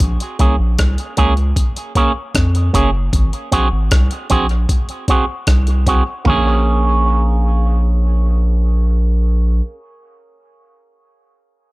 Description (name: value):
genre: dub reggae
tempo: 77 BPM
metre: 4/4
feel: straight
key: Bb minor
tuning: A4 = 440 Hz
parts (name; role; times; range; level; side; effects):
- soft dub sub bass; bass; 0.0-9.6 s; Gb1 to F2; -14 LUFS; equal; none
- breakbeat sampler-style drum kit; drums; 0.0-6.4 s; hi-hat, kick drum, rim click, toms; -17 LUFS; equal; none
- electric guitar with an envelope filter; accompaniment; 0.4-9.8 s; Bb3 to Ab4; -20 LUFS; right 3 dB; dub echo
room: little or no reverb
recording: none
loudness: -13 LUFS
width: side -21 dB against mid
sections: 0.0-6.3 A section; 6.3-9.4 B section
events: none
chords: 0.0 Bbm7; 3.1 Ab7; 6.3 Bbm7